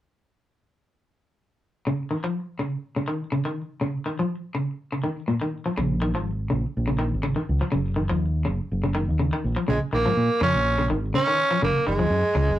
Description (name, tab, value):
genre	afrobeat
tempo	123 BPM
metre	4/4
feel	swing 54% on 16ths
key	Bb minor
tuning	A4 = 440 Hz
part	electric guitar at the edge of break-up	arpeggios	1.9-12.5 s	Bb2 to F3	-26 LUFS	left 1 dB	harmonic tremolo
part	fingered electric bass	bass	5.8-12.6 s	Gb1 to Bb2	-24 LUFS	equal	none
part	raspy tenor saxophone	melody	9.7-12.6 s	Ab3 to Db4	-22 LUFS	right 1 dB	none
room	moderate small room reverb, RT60 0.5 s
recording	rough rehearsal-room recording, warm saturation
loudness	-22 LUFS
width	side -13 dB against mid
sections	1.9-9.7 A section; 9.7-12.6 B section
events	none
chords	1.9 Dbadd9; 3.8 Bbmadd11 (rootless); 5.8 Bbm7; 7.7 Gb5; 9.7 Bbm7; 11.6 Gb5